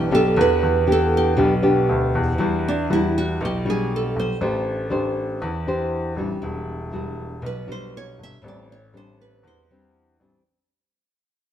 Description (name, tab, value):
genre	bossa nova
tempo	119 BPM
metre	4/4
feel	straight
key	E minor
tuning	A4 = 437 Hz
part	nylon-string guitar	melody	0.0-9.6 s	D4 to E5	-23 LUFS	right 4 dB	none
part	nylon-string guitar	accompaniment	0.0-10.4 s	G2 to C5	-22 LUFS	left 1 dB	none
part	clear grand piano	bass	0.0-10.3 s	E1 to E2	-25 LUFS	left 1 dB	none
room	wet stone room reverb, RT60 1.3 s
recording	band playing live in one room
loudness	-19 LUFS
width	side -10 dB against mid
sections	0.0-2.4 A section; 2.4-10.5 B section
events	fade-out 2.4-10.5; nylon-string guitar solo 2.4-10.5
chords	0.0 Em7; 2.4 Em9; 4.4 Am7; 6.4 Em9; 8.4 Am7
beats	| 0.37 0.88 1.38 1.88 | 2.39 2.89 3.39 3.90 | 4.40 4.91 5.41 5.91 | 6.42 6.92 7.43 7.93 | 8.44 8.94 9.45 9.95